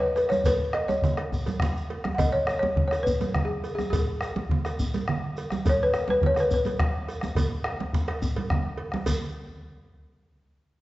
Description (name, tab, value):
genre	west african traditional, West African drum ensemble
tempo	140 BPM (dotted quarters)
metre	12/8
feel	straight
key	B major pentatonic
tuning	A4 = 438 Hz
part	balafon	melody	0.0-8.8 s	G#4 to F#5	-25 LUFS	left 1 dB	none
part	congas	percussion	0.0-9.2 s	none	-32 LUFS	right 4 dB	none
part	bombo	percussion	0.2-9.2 s	none	-29 LUFS	equal	none
part	cowbell	percussion	0.2-9.2 s	none	-37 LUFS	right 3 dB	none
part	shekere	percussion	0.2-9.2 s	none	-38 LUFS	right 1 dB	none
part	djembe	percussion	0.3-9.2 s	none	-33 LUFS	left 1 dB	none
room	wet recital hall reverb, RT60 1.7 s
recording	worn, warbling old tape, cassette tape, warbly pitch drift, nothing above 7.8 kHz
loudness	-24 LUFS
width	side -17 dB against mid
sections	0.0-9.1 A section; 9.1-10.8 B section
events	speeding up 0.0-10.8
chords	none